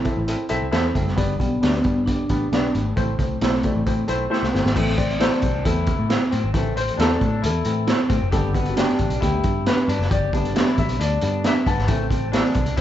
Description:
uptempo 1960s-style soul; 135 BPM; 4/4; straight; A minor; A4 = 440 Hz
vibraphone with soft mallets; melody; 0.0-4.3 s; G3 to E4; -26 LUFS; equal
dark baby grand piano; accompaniment; 0.0-12.8 s; G2 to A5; -26 LUFS; left 2 dB
vintage muted picked electric bass; bass; 0.0-12.8 s; F#1 to A2; -24 LUFS; equal
crunchy breakbeat drum kit; drums; 0.0-12.8 s; crash cymbal, hi-hat, kick drum, snare drum; -22 LUFS; right 1 dB
mellow electric guitar; stabs; 0.7-12.5 s; D4 to C5; -29 LUFS; right 6 dB
electric guitar through a small old amp; riff; 4.7-12.8 s; A3 to G4; -28 LUFS; left 5 dB
light reverb; band playing live in one room, nothing above 7.8 kHz; -18 LUFS; side -11 dB against mid
0.0-4.8 A section; 4.8-12.8 B section
drum fill 4.3-4.8; grand piano solo 4.8-12.8
0.0 Am; 1.2 G; 3.0 Am; 8.3 G; 11.9 Am
0.28 0.73 | 1.18 1.62 2.07 2.52 | 2.97 3.42 3.86 4.31 | 4.76 5.21 5.65 6.10 | 6.54 6.99 7.43 7.88 | 8.33 8.77 9.22 9.66 | 10.11 10.55 11.00 11.44 | 11.89 12.33 12.78

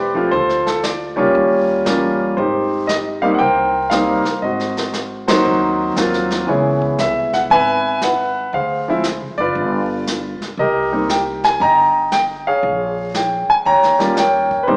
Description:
jazz piano trio; 117 BPM; 4/4; swing 67% on 8ths; Ab major; A4 = 442 Hz
warm baby grand piano; melody; 0.0-14.8 s; Fb3 to Bb5; -18 LUFS; equal
upright bass; bass; 0.0-14.8 s; E1 to Eb2; -30 LUFS; equal
vintage brush drum kit; drums; 0.3-14.8 s; brushed snare drum, hi-hat, kick drum, ride cymbal, snare drum; -27 LUFS; equal
wet recital hall reverb, RT60 1.4 s; recorded in a church or concert hall, small speaker sound; -17 LUFS; mono
0.0-2.4 A section; 2.4-14.8 B section
band accent 5.2
0.3 Dm7; 1.4 Eb7; 2.4 Abmaj9; 4.4 Ab7; 6.5 Dbm7; 8.5 Dm7b5; 9.6 G7; 10.6 Cm7; 12.6 Bbm7; 13.7 Eb7
| 0.33 0.84 1.35 1.86 | 2.38 2.89 3.40 3.91 | 4.42 4.94 5.45 5.96 | 6.47 6.99 7.50 8.01 | 8.53 9.04 9.55 10.06 | 10.58 11.09 11.60 12.12 | 12.63 13.14 13.65 14.17 | 14.68

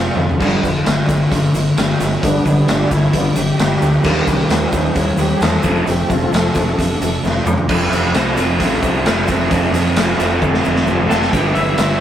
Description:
classic rock; 132 BPM; 4/4; straight; A4 = 439 Hz
bright tonewheel organ; sustained chords; 0.0-12.0 s; D3 to C5; -23 LUFS; equal; slow rotary speaker, overdrive
crunchy overdriven guitar; riff; 0.0-12.0 s; F2 to D4; -17 LUFS; equal
growling fingered electric bass; bass; 0.0-12.0 s; F1 to F2; -22 LUFS; equal; overdrive
raw garage drum kit; drums; 0.2-11.9 s; crash cymbal, hi-hat, kick drum, snare drum, tambourine, toms; -17 LUFS; equal
tube shaker; percussion; 0.3-12.0 s; -40 LUFS; right 5 dB
overdriven slide guitar; melody; 11.1-12.0 s; E5 to A5; -21 LUFS; left 2 dB
octave-fuzz lead guitar; second line; 11.1-12.0 s; E4 to A4; -27 LUFS; right 4 dB
light reverb; rough rehearsal-room recording, tube saturation; -13 LUFS; side -10 dB against mid
0.0-7.7 A section; 7.7-11.3 B section
tonewheel organ solo 0.0-7.7; drum fill 0.2, 7.2-7.7, 10.4-11.3
0.4 G; 4.0 Eb; 5.6 F; 11.3 G
| 0.40 0.85 1.31 1.77 | 2.22 2.68 3.14 3.59 | 4.05 4.50 4.96 5.41 | 5.87 6.32 6.78 7.23 | 7.69 8.14 8.60 9.05 | 9.51 9.96 10.41 10.87 | 11.32 11.78

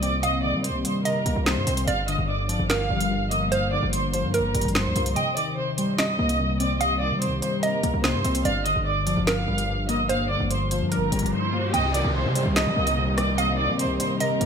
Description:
hip hop, drill; 146 BPM; 4/4; half-time; C minor; A4 = 444 Hz
warm studio violin section; melody; 0.0-14.5 s; Bb4 to F6; -26 LUFS; right 1 dB; low-pass filter
warbly lo-fi synth keys; accompaniment; 0.0-14.5 s; G2 to C4; -26 LUFS; left 2 dB; chorus, low-pass filter
hard-hitting 808-style bass; bass; 0.0-14.5 s; G1 to G3; -28 LUFS; right 1 dB
drill drum kit; drums; 0.0-14.5 s; finger snaps, hi-hat, rim click, snare drum; -28 LUFS; equal
hollow square pluck; second line; 0.2-14.5 s; Bb4 to G5; -30 LUFS; right 3 dB; chorus, ping-pong delay
riser and downlifter; sound effects; 10.9-14.5 s; -34 LUFS; right 1 dB
warm studio string section; sustained chords; 11.7-14.5 s; G3 to Bb4; -32 LUFS; equal
moderate recital hall reverb, RT60 1.3 s; -21 LUFS; side -7 dB against mid
0.0-11.7 A section; 11.7-14.5 B section
break 5.2-6.0; riser 10.9-11.7
0.0 Cm7; 1.9 Gm7; 5.2 Cm7; 8.5 Gm7; 11.7 Cm7
| 0.23 0.64 1.05 1.47 | 1.88 2.29 2.70 3.11 | 3.52 3.93 4.34 4.75 | 5.16 5.57 5.99 6.40 | 6.81 7.22 7.63 8.04 | 8.45 8.86 9.27 9.68 | 10.10 10.51 10.92 11.33 | 11.74 12.15 12.56 12.97 | 13.38 13.79 14.20

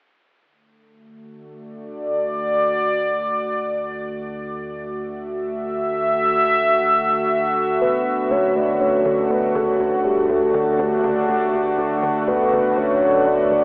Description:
ambient, sequencer-driven space music; 121 BPM; 4/4; straight; D major; A4 = 444 Hz
sweeping resonant pad; sustained chords; 0.4-13.6 s; D3 to E5; -19 LUFS; equal; chorus, shimmer reverb
round analog bass; bass; 0.4-13.6 s; D2; -51 LUFS; equal
soft octave-layered synth lead; melody; 7.8-13.6 s; G4 to D5; -20 LUFS; equal; chorus, phaser, shimmer reverb, tape echo
hollow square pluck; riff; 8.3-13.6 s; D2 to D3; -30 LUFS; equal; chorus, shimmer reverb, tape echo
wet huge ambient reverb, RT60 7.7 s; dreamy mix soaked in reverb, telephone sound; -17 LUFS; side -30 dB against mid
0.4-8.3 A section; 8.3-13.6 B section
filter sweep on analog synth pad 0.4-8.3
0.4 D
| 0.38 0.87 1.37 1.87 | 2.36 2.86 3.35 3.85 | 4.34 4.84 5.34 5.83 | 6.33 6.83 7.32 7.82 | 8.31 8.81 9.30 9.80 | 10.30 10.79 11.29 11.78 | 12.28 12.78 13.27

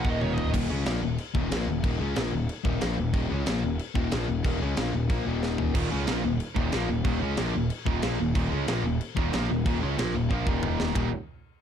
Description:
heavy metal; 184 BPM; 4/4; straight; A4 = 442 Hz
high-gain lead guitar; melody; 0.0-0.5 s; Db5 to Gb5; -34 LUFS; equal; distortion, digital delay
distorted electric guitar; riff; 0.0-11.1 s; Eb2 to Db4; -34 LUFS; right 1 dB; overdrive
sludgy distorted guitar; riff; 0.0-11.1 s; Eb2 to Db4; -31 LUFS; left 10 dB; overdrive
tight distorted guitar; riff; 0.0-0.5, 5.7-11.1 s; Eb2 to Db4; -32 LUFS; right 12 dB; distortion
fuzz picked electric bass; bass; 0.0-11.1 s; Eb1 to Db2; -30 LUFS; equal; overdrive
tight metal drum kit; drums; 0.0-11.0 s; crash cymbal, kick drum, ride cymbal, snare drum, toms; -30 LUFS; equal
light reverb; dark, warm production; -25 LUFS; side -8 dB against mid
0.5-11.0 A section
drum fill 0.2-0.5, 5.4-5.7, 10.3-11.0
0.0 Eb5
0.20 | 0.53 0.86 1.18 1.51 | 1.84 2.16 2.49 2.81 | 3.14 3.47 3.79 4.12 | 4.44 4.77 5.10 5.42 | 5.75 6.07 6.40 6.72 | 7.05 7.38 7.70 8.03 | 8.35 8.68 9.01 9.33 | 9.66 9.98 10.31 10.63 | 10.96

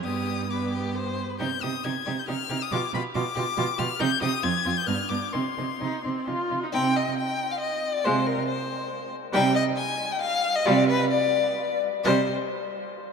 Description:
quick classical-period movement for string quartet; 122-141 BPM; 3/4; rubato; C minor; A4 = 442 Hz
rich violin; melody; 0.0-12.3 s; Eb4 to Ab6; -32 LUFS; left 8 dB
rich violin; second line; 0.0-12.3 s; D4 to Ab5; -28 LUFS; left 4 dB
rich viola; accompaniment; 0.0-12.3 s; G3 to F4; -30 LUFS; equal
clear cello; bass; 0.0-12.3 s; F2 to C3; -28 LUFS; right 7 dB
wet cathedral reverb, RT60 6.1 s; in a vast, echoing space; -23 LUFS; side -6 dB against mid
0.0-6.7 A section; 6.7-12.0 B section; 12.0-13.1 C section
0.0 G; 1.4 Cm; 2.7 G7/B; 4.0 Cm; 4.4 Fm; 4.9 G7; 5.3 Cm; 8.0 Fm/C (rootless); 9.3 Cm
| 0.04 0.50 0.95 | 1.40 1.85 2.29 | 2.72 3.15 3.58 | 4.01 4.44 4.88 | 5.34 5.81 6.28 | 6.74 7.18 7.62 | 8.05 8.47 8.90 | 9.33 9.77 10.21 | 10.66 11.11 11.57 | 12.05

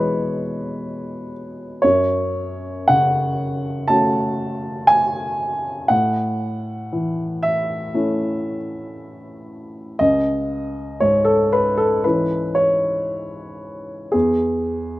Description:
neoclassical minimalist piano; 59 BPM; 4/4; rubato; F# dorian; A4 = 440 Hz
dark upright piano; solo; 0.0-15.0 s; C#2 to A5; -18 LUFS; equal
light reverb, small room reverb; rough home demo mix; -18 LUFS; side -17 dB against mid
0.0-15.0 A section
0.0 E; 1.8 F#m; 5.9 A; 10.0 C#madd9; 14.1 E
0.81 | 1.82 2.87 3.89 4.89 | 5.91 6.93 7.95 8.98 | 9.99 11.02 12.04 13.07 | 14.13

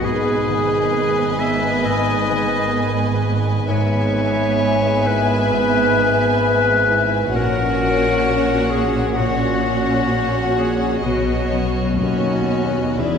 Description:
cinematic, emotional film score for orchestra; 65 BPM; 4/4; rubato; G# minor; A4 = 440 Hz
bright clarinet; second line; 0.0-13.2 s; C#4 to E5; -21 LUFS; left 1 dB
clear studio violin section; second line; 0.0-13.2 s; C#5 to G#5; -24 LUFS; left 4 dB
rich studio viola section; accompaniment; 0.0-13.2 s; B3 to B4; -23 LUFS; right 1 dB
concert harp; arpeggios; 0.0-13.2 s; G#2 to G#4; -25 LUFS; left 3 dB
rich studio double bass section; bass; 0.0-13.2 s; E1 to D#2; -26 LUFS; right 2 dB
rich symphonic cello section; bass; 0.0-13.2 s; D#2 to B2; -25 LUFS; right 3 dB
wet concert hall reverb, RT60 2.1 s; heard from further back in the room; -16 LUFS; side -6 dB against mid
0.0-13.2 A section
0.0 G#m; 3.7 E/G#; 7.3 F#/A#; 11.0 Badd9
| 0.04 0.95 1.86 2.77 | 3.69 4.60 5.50 6.41 | 7.33 8.26 9.19 10.11 | 11.05 12.00 12.99

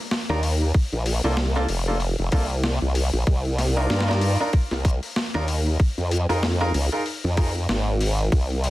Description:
glitch hop; 95 BPM; 4/4; swing 58% on 16ths; A4 = 440 Hz
boom bap sampler-style drum kit; drums; 0.1-8.7 s; hi-hat, snare drum; -29 LUFS; left 1 dB; overdrive
clear grand piano; stabs; 0.3-7.5 s; Bb3 to Bb4; -28 LUFS; right 1 dB; sidechain pumping, tape echo
formant-sweep wobble bass; bass; 0.3-8.7 s; F1 to G2; -22 LUFS; equal; chorus
electronic kick drum; drums; 0.7-8.5 s; -19 LUFS; equal
little or no reverb; dense, heavily limited modern master, vinyl crackle; -20 LUFS; side -17 dB against mid
0.0-8.7 A section
0.0 N.C.; 0.7 Fadd11; 3.3 Cm11; 5.8 Db69 (rootless)
0.11 | 0.74 1.38 2.01 2.64 | 3.27 3.90 4.53 5.17 | 5.80 6.43 7.06 7.69 | 8.32

